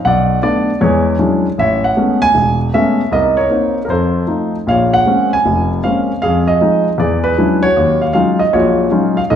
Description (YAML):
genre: solo jazz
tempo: 156 BPM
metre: 4/4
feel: swing 65% on 8ths, rubato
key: unclear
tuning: A4 = 441 Hz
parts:
  - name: warm grand piano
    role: solo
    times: 0.0-9.4 s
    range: E1 to G#5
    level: -11 LUFS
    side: equal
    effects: none
room: wet recital hall reverb, RT60 1.3 s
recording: recorded in a church or concert hall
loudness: -11 LUFS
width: side -9 dB against mid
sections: 0.0-9.4 A section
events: none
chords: 0.0 Cbm7; 0.8 E13; 1.6 Amaj9; 3.1 Cm7; 3.9 F7; 4.7 Bbm9; 6.2 Fm7; 7.0 E13; 7.8 Ebm11